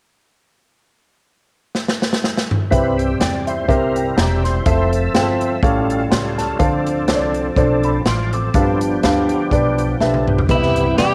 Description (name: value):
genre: uptempo gospel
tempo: 124 BPM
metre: 4/4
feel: swing 56% on 8ths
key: C major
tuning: A4 = 442 Hz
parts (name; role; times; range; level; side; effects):
- swinging big-band drum kit; drums; 1.7-11.1 s; hi-hat, kick drum, snare drum, toms; -23 LUFS; equal; cassette tape
- warm baby grand piano; accompaniment; 2.7-11.1 s; G2 to D6; -21 LUFS; equal; cassette tape
- tonewheel organ; sustained chords; 2.7-11.1 s; C3 to E5; -25 LUFS; equal; slow rotary speaker, overdrive, chorus vibrato, cassette tape
- upright bass; bass; 2.7-11.1 s; E1 to E2; -25 LUFS; equal; none
- clean electric guitar; melody; 10.5-11.1 s; E4 to G4; -21 LUFS; equal; cassette tape
- warm studio string section; melody; 10.5-11.1 s; G3 to G4; -26 LUFS; equal; cassette tape
- mellow French horn section; sustained chords; 10.5-11.1 s; none; barely audible; none; none
room: moderate booth ambience, RT60 0.2 s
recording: home recording on cassette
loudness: -17 LUFS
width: mono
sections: 0.8-2.7 A section; 2.7-10.5 B section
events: drum fill 1.7-2.7, 10.0-10.5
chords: 0.8 N.C.; 2.7 Cmaj7; 3.7 C7; 4.7 Fmaj7; 5.6 Aaug7; 6.6 Dm7; 8.5 G7; 10.5 Cmaj7